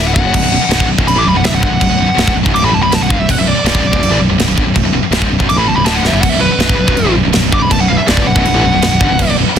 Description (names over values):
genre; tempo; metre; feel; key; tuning
heavy metal; 162 BPM; 4/4; straight; B minor; A4 = 440 Hz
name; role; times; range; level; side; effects
high-gain lead guitar; melody; 0.0-9.3 s; B4 to D6; -16 LUFS; equal; distortion, tape echo
heavy high-gain guitar; riff; 0.0-9.5 s; B1 to E3; -17 LUFS; left 12 dB; distortion
modern bright picked electric bass; bass; 0.0-9.6 s; B0 to A1; -17 LUFS; right 1 dB; none
tight metal drum kit; drums; 0.2-9.6 s; china cymbal, crash cymbal, kick drum, snare drum; -15 LUFS; right 1 dB; soft clipping on kick
scooped high-gain guitar; riff; 0.3-9.6 s; B1 to E3; -17 LUFS; right 12 dB; distortion
clear symphonic string section; sustained chords; 6.2-9.6 s; F#3 to B4; -26 LUFS; right 1 dB; none
room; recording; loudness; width
little or no reverb; dense, heavily limited modern master; -10 LUFS; side -8 dB against mid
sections
0.0-9.6 A section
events
lead electric guitar solo 0.0-9.6; drum fill 6.0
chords
0.0 Bm